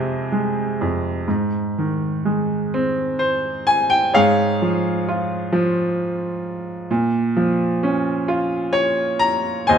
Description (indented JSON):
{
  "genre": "classical, lyrical solo piano",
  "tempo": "43 BPM (dotted quarters)",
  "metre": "6/8",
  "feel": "rubato",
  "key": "Ab major",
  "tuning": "A4 = 440 Hz",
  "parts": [
    { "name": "bright baby grand piano", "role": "solo", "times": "0.0-9.8 s", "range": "Eb2 to Bb5", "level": "-18 LUFS", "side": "equal", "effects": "none" }
  ],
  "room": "light reverb",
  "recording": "close, detailed microphones",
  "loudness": "-18 LUFS",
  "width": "side -7 dB against mid",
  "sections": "0.0-1.3 A section; 1.3-9.8 B section",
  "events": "none",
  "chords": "0.0 Fm; 1.3 Ab; 4.1 Db/Ab; 6.9 Bbm",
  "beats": "| 1.28 2.73 | 4.15 5.51 | 6.89 8.29 | 9.69"
}